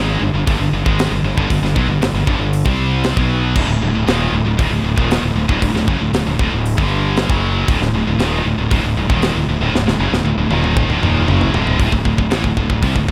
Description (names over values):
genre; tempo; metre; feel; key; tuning
heavy metal; 116 BPM; 4/4; straight; D phrygian dominant; A4 = 439 Hz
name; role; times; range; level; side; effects
scooped high-gain guitar; riff; 0.0-13.1 s; D2 to C4; -23 LUFS; equal; distortion
scooped high-gain guitar; riff; 0.0-13.1 s; D2 to C4; -23 LUFS; equal; distortion
fuzz fingered electric bass; bass; 0.0-13.1 s; D1 to C2; -21 LUFS; equal; overdrive
tight metal drum kit; drums; 0.5-13.1 s; crash cymbal, hi-hat, kick drum, snare drum, toms; -22 LUFS; equal; none
room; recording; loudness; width
studio reverb; none; -16 LUFS; mono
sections
0.0-11.8 A section; 11.8-13.1 B section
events
drum fill 9.7-11.8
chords
0.0 G5; 2.7 C5; 3.2 B5; 3.6 D5; 6.8 G5; 7.3 D; 11.8 D5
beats
0.47 0.98 | 1.50 2.01 2.53 3.04 | 3.56 4.07 4.59 5.10 | 5.62 6.13 6.65 7.16 | 7.68 8.19 8.71 9.22 | 9.74 10.25 10.77 11.28 | 11.79 12.31 12.82